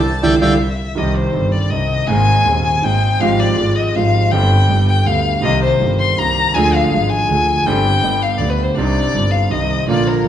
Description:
tango; 162 BPM; 3/4; rubato; C minor; A4 = 441 Hz
warm violin; second line; 0.0-10.3 s; Bb4 to C6; -18 LUFS; left 4 dB
bandoneon; melody; 0.2-0.5 s; D5 to G5; -20 LUFS; equal
bright concert grand piano; accompaniment; 0.2-10.3 s; Eb1 to Ab4; -17 LUFS; right 2 dB
bandoneon; stabs; 0.2-0.5, 9.9-10.3 s; D4 to Bb4; -31 LUFS; right 2 dB
clear double bass; bass; 0.2-10.3 s; G1 to Eb2; -19 LUFS; equal
wet large studio reverb, RT60 1.2 s; band playing live in one room, nothing above 10.8 kHz; -13 LUFS; side -10 dB against mid
1.0-10.3 A section
band accent 0.0-1.0; violin solo 1.0-10.3
0.0 Cadd9; 1.0 Cm; 2.1 Abadd9; 3.2 Fmadd9/Ab; 4.3 Gsus4; 4.7 G; 5.4 Cm7; 6.6 Ddim; 7.7 Gsus4; 8.0 G; 8.8 Cmadd9
0.23 0.61 | 0.98 1.36 1.73 | 2.10 2.47 2.85 | 3.21 3.58 3.95 | 4.32 4.69 5.07 | 5.44 5.81 6.18 | 6.55 6.92 7.29 | 7.66 8.03 8.40 | 8.77 9.14 9.51 | 9.88 10.25

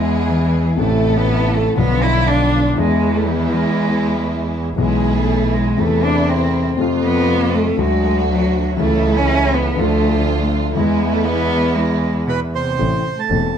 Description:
tango; 120 BPM; 4/4; rubato; A harmonic minor; A4 = 440 Hz
warm cello; second line; 0.0-13.6 s; B2 to E4; -19 LUFS; right 1 dB
warm concert grand piano; accompaniment; 0.0-13.5 s; E1 to A4; -19 LUFS; left 4 dB
warm symphonic string section; stabs; 0.0-12.7 s; F#3 to A4; -25 LUFS; right 3 dB
bright double bass; bass; 0.0-13.5 s; E1 to F2; -21 LUFS; right 3 dB
bandoneon; melody; 12.3-13.6 s; B4 to A5; -21 LUFS; right 7 dB
light reverb; dark, warm production; -14 LUFS; side -8 dB against mid
0.0-12.8 A section
cello solo 0.0-12.8
0.0 E; 0.8 Am; 1.8 Bdim; 2.8 E; 5.8 Am/E; 6.8 F; 7.8 D; 8.8 A/C#; 9.8 Dm; 10.8 E; 12.8 Am
0.30 | 0.79 1.28 1.78 2.27 | 2.77 3.27 3.77 4.28 | 4.78 5.29 5.79 6.29 | 6.79 7.29 7.79 8.29 | 8.79 9.28 9.78 10.28 | 10.77 11.27 11.77 12.28 | 12.79 13.30

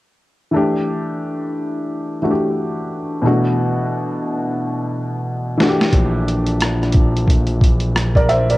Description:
R&B, neo-soul; 89 BPM; 4/4; swing 63% on 16ths; A4 = 440 Hz
warm upright piano; accompaniment; 0.5-8.6 s; B2 to E5; -18 LUFS; equal; cassette tape
boom bap sampler-style drum kit; drums; 5.6-8.6 s; hi-hat, kick drum, rim click, snare drum; -16 LUFS; equal; cassette tape
fat analog bass; bass; 5.9-8.6 s; Bb1; -18 LUFS; equal
light reverb; home recording on cassette; -16 LUFS; side -18 dB against mid
0.5-8.6 A section
drum fill 4.6-5.9
0.5 A5; 3.2 Bm7; 5.6 Bbmaj7
| 0.53 1.21 1.88 2.56 | 3.23 3.90 4.58 5.25 | 5.93 6.60 7.28 7.95

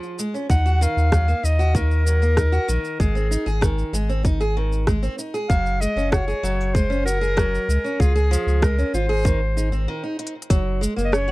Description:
folktronica; 96 BPM; 4/4; straight; Gb lydian; A4 = 445 Hz
fingerpicked steel-string acoustic guitar; arpeggios; 0.0-11.3 s; Eb3 to Ab4; -26 LUFS; right 1 dB; tape echo
organic electronic drum kit; drums; 0.0-11.3 s; claves, hi-hat, rim click, shaker; -27 LUFS; equal
bright clarinet; melody; 0.5-11.3 s; Ab4 to Gb5; -25 LUFS; equal; tape echo
warm sub bass; bass; 0.5-11.3 s; Gb1 to Eb2; -20 LUFS; equal
electronic kick drum; drums; 0.5-10.6 s; -20 LUFS; equal
little or no reverb; dry, close 1970s-style studio recording; -18 LUFS; side -20 dB against mid
0.0-10.5 A section
break 9.9-10.5; drum fill 10.2-10.5
0.0 Db; 0.5 Ebm; 3.0 Ab; 5.5 Gbsus2; 8.0 Db; 9.2 Ab; 10.5 Gbadd9
| 0.50 1.12 1.75 2.38 | 3.00 3.62 4.25 4.88 | 5.50 6.12 6.75 7.38 | 8.00 8.62 9.25 9.88 | 10.50 11.12

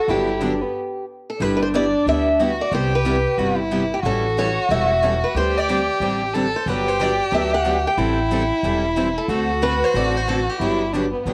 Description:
acoustic string swing (jazz manouche); 183 BPM; 4/4; swing 61% on 8ths; G major; A4 = 438 Hz
picked old ladder-braced acoustic guitar; melody; 0.0-11.3 s; G4 to G5; -25 LUFS; equal
warm violin; second line; 0.0-11.2 s; B3 to A4; -25 LUFS; equal
picked steel-string acoustic guitar; accompaniment; 0.1-11.3 s; C3 to A4; -29 LUFS; equal
picked steel-string acoustic guitar; accompaniment; 0.1-11.3 s; C3 to A4; -32 LUFS; equal
upright bass; bass; 0.1-11.3 s; E1 to D2; -28 LUFS; equal
moderate spring reverb, RT60 1.2 s, studio ambience; home recording on cassette; -20 LUFS; mono
0.0-1.4 A section; 1.4-11.3 A section
stop 0.7-1.4
0.1 Gmaj7; 1.4 G6; 2.7 Cmaj7; 4.0 A7; 5.3 D7sus4; 6.7 Gmaj7; 8.0 Am7; 9.3 D7; 10.6 Gmaj7
| 0.08 0.41 0.74 1.07 | 1.40 1.73 2.06 2.39 | 2.72 3.05 3.38 3.71 | 4.03 4.36 4.69 5.02 | 5.35 5.68 6.00 6.33 | 6.66 6.99 7.32 7.65 | 7.98 8.30 8.63 8.96 | 9.29 9.62 9.94 10.27 | 10.60 10.93 11.26

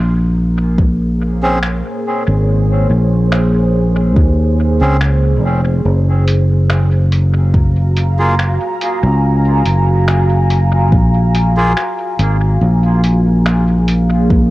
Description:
ambient dub; 71 BPM; 4/4; swing 53% on 16ths; Bb minor; A4 = 438 Hz
deep dark ambient pad; sustained chords; 0.0-14.5 s; Bb3 to Bb5; -20 LUFS; equal; chorus, built-in reverb, cassette tape
fingered electric bass; bass; 0.0-14.5 s; F1 to Eb2; -12 LUFS; equal; tube saturation
electronic kick drum; drums; 0.8-14.5 s; -12 LUFS; equal; overdrive, cassette tape
melodica; stabs; 1.4-11.7 s; Bb3 to Ab4; -21 LUFS; right 1 dB; cassette tape, dub echo
lo-fi sampler-style drum kit; drums; 1.6-14.1 s; finger snaps, hi-hat; -24 LUFS; equal; cassette tape, dub echo
digital ambience; home recording on cassette; -11 LUFS; side -18 dB against mid
0.0-14.5 A section
fade-in on ambient pad 0.0-14.5
0.0 Bbm9; 5.9 Gbmaj9; 12.6 Bbm9
0.78 1.63 | 2.47 3.32 4.16 5.01 | 5.85 6.70 7.54 8.39 | 9.23 10.08 10.92 11.77 | 12.61 13.46 14.30

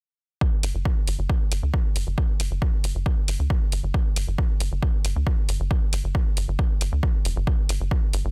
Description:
driving peak-time techno; 136 BPM; 4/4; straight; A4 = 445 Hz
electronic kick drum; drums; 0.4-8.0 s; -24 LUFS; equal; overdrive
tight sequencer bass; bass; 0.6-8.3 s; F1 to D2; -27 LUFS; equal; sidechain pumping
electronic hi-hat; drums; 0.6-8.2 s; -35 LUFS; equal; overdrive, sidechain pumping on hats
little or no reverb; dense, heavily limited modern master; -24 LUFS; mono
0.4-8.3 A section
| 0.41 0.85 1.30 1.74 | 2.18 2.62 3.06 3.50 | 3.94 4.38 4.83 5.27 | 5.71 6.15 6.59 7.03 | 7.47 7.91

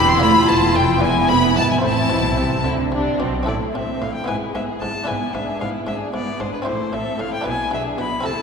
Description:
classical, baroque-style concerto movement with solo episodes; 75 BPM (dotted quarters); 6/8; straight; A minor; A4 = 440 Hz
rich studio violin section; melody; 0.0-8.4 s; G#4 to C6; -26 LUFS; left 6 dB
rich violin; melody; 0.0-8.4 s; B4 to C6; -23 LUFS; left 3 dB
rich chamber violin section; second line; 0.0-8.4 s; C4 to A4; -26 LUFS; left 2 dB
buff-stop harpsichord; accompaniment; 0.0-8.4 s; D2 to E5; -27 LUFS; left 1 dB
warm chamber viola section; accompaniment; 0.0-8.4 s; G#3 to E4; -24 LUFS; right 2 dB
rich chamber double bass section; bass; 0.0-8.3 s; E1 to D2; -26 LUFS; right 3 dB
warm studio cello section; bass; 0.0-8.3 s; D2 to D3; -27 LUFS; right 4 dB
wet church reverb, RT60 3.0 s; recorded in a church or concert hall; -17 LUFS; side -6 dB against mid
0.0-3.5 A section; 3.5-8.4 B section
0.2 Bdim; 1.0 E7; 1.8 Am; 4.3 E/G#; 5.1 E7/G#; 6.7 Am; 7.5 E7/B
| 0.21 1.02 | 1.84 2.66 | 3.48 4.28 | 5.08 5.88 | 6.68 7.47 | 8.26

